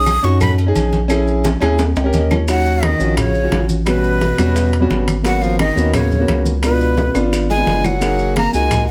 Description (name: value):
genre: Afro-Cuban jazz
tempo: 173 BPM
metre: 4/4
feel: straight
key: Eb minor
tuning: A4 = 440 Hz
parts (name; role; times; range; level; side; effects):
- breathy jazz flute; melody; 0.0-8.9 s; Cb5 to D#6; -22 LUFS; equal; none
- warm concert grand piano; accompaniment; 0.0-8.8 s; G3 to G5; -22 LUFS; equal; none
- round analog bass; bass; 0.0-8.9 s; Gb1 to F#2; -20 LUFS; equal; none
- agogo bells and timbales; percussion; 0.1-8.9 s; none; -29 LUFS; equal; none
- claves; percussion; 0.1-8.9 s; none; -33 LUFS; equal; none
- congas; percussion; 0.1-8.9 s; none; -26 LUFS; equal; none
- cowbell and bongos; percussion; 0.1-8.9 s; none; -29 LUFS; equal; none
- maracas; percussion; 0.1-8.9 s; none; -36 LUFS; equal; none
- breathy tenor saxophone; second line; 2.5-8.9 s; B2 to Bb3; -25 LUFS; equal; none
room: moderate large studio reverb, RT60 0.8 s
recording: none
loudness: -16 LUFS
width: mono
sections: 0.0-2.5 A section; 2.5-8.9 B section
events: flute solo 0.0-2.5; drum fill 1.4-2.5, 7.0-8.0; grand piano fill 1.8-2.5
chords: 0.0 B6; 1.1 A#m7b5; 1.8 D#7; 2.5 Ebm9; 3.9 A13; 5.2 Abm11; 6.6 Db7b9; 8.0 Gb6